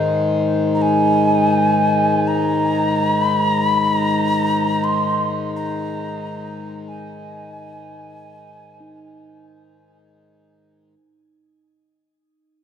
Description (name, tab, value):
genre	world meditative, free-time meditation music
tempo	free time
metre	none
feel	none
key	unclear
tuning	A4 = 440 Hz
part	pedal harmonium	drone	0.0-10.9 s	Ab2 to Eb3	-19 LUFS	left 2 dB	none
part	breathy alto ocarina	melody	0.7-10.0 s	Ab5 to C6	-20 LUFS	right 1 dB	shimmer reverb
part	bronze singing bowl	texture	8.8-11.4 s	Eb4	-51 LUFS	right 5 dB	none
room	wet concert hall reverb, RT60 2.3 s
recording	dark, warm production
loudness	-16 LUFS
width	side -8 dB against mid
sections	0.0-10.8 A section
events	fade-out 0.0-10.8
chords	none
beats	free time